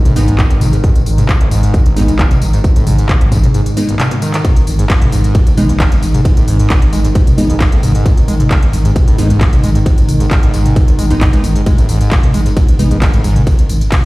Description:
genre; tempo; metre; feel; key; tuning
driving peak-time techno; 133 BPM; 4/4; straight; G# phrygian; A4 = 436 Hz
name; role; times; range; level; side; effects
deep dark ambient pad; drone; 0.0-14.1 s; G#2 to D#3; -20 LUFS; equal; chorus, built-in reverb, sidechain pumping
screaming distorted acid line; riff; 0.1-13.4 s; G#1 to G#3; -17 LUFS; equal; distortion, wide subtle chorus, sidechain pumping, tape echo
growling 808-style bass; bass; 0.1-13.8 s; G#1; -16 LUFS; equal; overdrive, sidechain pumping, low-pass filter
techno drum kit; drums; 0.1-14.0 s; handclaps, hi-hat, ride cymbal, tambourine, toms; -19 LUFS; equal; studio reverb
wavetable chord stab; stabs; 0.2-13.0 s; G#3 to D#4; -19 LUFS; right 1 dB; sidechain pumping, tape echo
electronic kick drum; drums; 0.4-14.0 s; none; -12 LUFS; equal; studio reverb
room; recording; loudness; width
light reverb; played on a big sound system in a bare room, large studio reverb; -9 LUFS; side -20 dB against mid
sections
0.0-14.1 A section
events
break 3.5-4.4; drum fill 4.0-4.4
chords
0.0 G#m

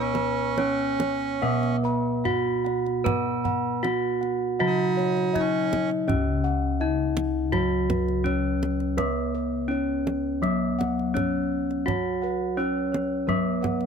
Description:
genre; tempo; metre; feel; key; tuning
Javanese gamelan; 82 BPM; 4/4; uneven beats; unclear; A4 = 440 Hz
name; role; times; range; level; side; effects
gamelan-type bronze metallophone; melody; 0.0-13.9 s; B3-40c to B4-40c; -27 LUFS; equal; none
accordion; second line; 0.0-5.9 s; C#4 to D#4+40c; -30 LUFS; right 8 dB; none
gamelan-type bronze metallophone; accompaniment; 0.0-13.9 s; C#3 to B3-40c; -31 LUFS; right 2 dB; none
gamelan-type bossed gongs; arpeggios; 0.0-13.9 s; B4-40c to B5-40c; -33 LUFS; left 5 dB; none
gamelan-type bronze metallophone; arpeggios; 0.0-6.0, 11.9-13.9 s; B4-40c to B5-40c; -32 LUFS; right 7 dB; none
gamelan-type bossed gongs; bass; 0.0-13.9 s; C#2 to B4-40c; -30 LUFS; left 3 dB; none
kendang; percussion; 0.1-13.9 s; none; -31 LUFS; right 4 dB; none
room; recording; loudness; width
little or no reverb; close, detailed microphones; -23 LUFS; side -6 dB against mid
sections
0.0-6.1 A section; 6.1-13.9 B section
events
none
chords
none

